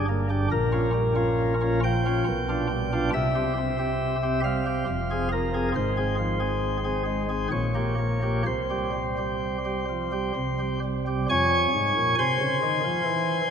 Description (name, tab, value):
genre	classical, chorale-style piece for pipe organ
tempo	62-72 BPM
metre	3/4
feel	rubato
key	F minor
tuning	A4 = 438 Hz
part	chamber organ, sparkling flutes	solo	0.0-13.5 s	F1 to Db6	-23 LUFS	equal	none
room	wet church reverb, RT60 3.6 s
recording	minimal, uncompressed stereo recording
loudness	-23 LUFS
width	side -7 dB against mid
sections	0.0-11.3 A section; 11.3-13.5 B section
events	none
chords	0.0 Gm; 0.5 Gm7b5/Bb; 2.3 G7/B; 3.1 C; 4.9 Fm; 5.7 Fm/Ab; 7.5 Gdim/Bb; 8.5 Csus4; 10.4 C5; 11.3 Fm